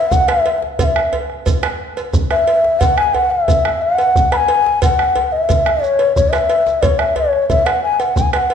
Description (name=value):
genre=west african traditional, West African drum ensemble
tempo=119 BPM (dotted quarters)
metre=12/8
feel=straight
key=E major pentatonic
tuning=A4 = 440 Hz
part: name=breathy bass bansuri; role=melody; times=0.0-8.5 s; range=C#5 to B5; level=-14 LUFS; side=left 2 dB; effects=none
part: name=bombo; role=percussion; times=0.1-8.5 s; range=none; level=-20 LUFS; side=right 4 dB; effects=none
part: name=djembe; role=percussion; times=0.1-8.5 s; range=none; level=-24 LUFS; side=left 3 dB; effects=none
part: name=shekere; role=percussion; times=0.1-8.3 s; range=none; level=-27 LUFS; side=right 4 dB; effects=none
part: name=cowbell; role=percussion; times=0.3-8.5 s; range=none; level=-25 LUFS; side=right 2 dB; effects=none
room=moderate recital hall reverb, RT60 1.6 s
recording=none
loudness=-13 LUFS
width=side -7 dB against mid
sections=0.0-8.5 A section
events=none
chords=none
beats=0.28 | 0.78 1.29 1.79 2.30 | 2.80 3.31 3.81 4.31 | 4.82 5.32 5.82 6.33 | 6.83 7.33 7.83 8.33